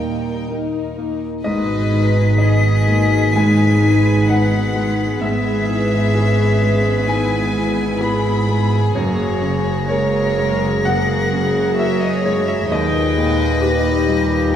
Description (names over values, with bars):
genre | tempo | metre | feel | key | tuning
cinematic, emotional film score for orchestra | 64 BPM | 4/4 | rubato | G# minor | A4 = 442 Hz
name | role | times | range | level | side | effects
warm symphonic violin section | melody | 0.0-14.5 s | G#4 to G5 | -27 LUFS | left 3 dB | none
warm chamber violin section | second line | 0.0-14.5 s | D#4 to B5 | -28 LUFS | left 2 dB | none
clear baby grand piano | accompaniment | 0.0-14.6 s | D#2 to B5 | -22 LUFS | left 1 dB | none
rich studio viola section | accompaniment | 0.0-14.6 s | D#3 to G5 | -26 LUFS | right 1 dB | none
warm French horn section | sustained chords | 0.0-14.6 s | A#2 to G#4 | -24 LUFS | left 4 dB | none
warm chamber double bass section | bass | 0.0-14.6 s | F#1 to D#2 | -21 LUFS | right 2 dB | none
warm symphonic cello section | bass | 0.0-14.6 s | D#2 to G3 | -23 LUFS | right 2 dB | none
bright clarinet | second line | 1.4-14.6 s | G4 to G#4 | -27 LUFS | left 4 dB | none
bright concert flute | second line | 1.4-14.6 s | A#6 to B6 | -25 LUFS | left 3 dB | none
room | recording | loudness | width
wet recital hall reverb, RT60 1.5 s | recorded in a church or concert hall | -15 LUFS | side -9 dB against mid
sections
0.0-1.4 A section; 1.4-14.6 A section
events
none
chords
0.0 D#; 1.4 G#m; 5.2 E/G#; 9.0 F#add9; 12.7 D#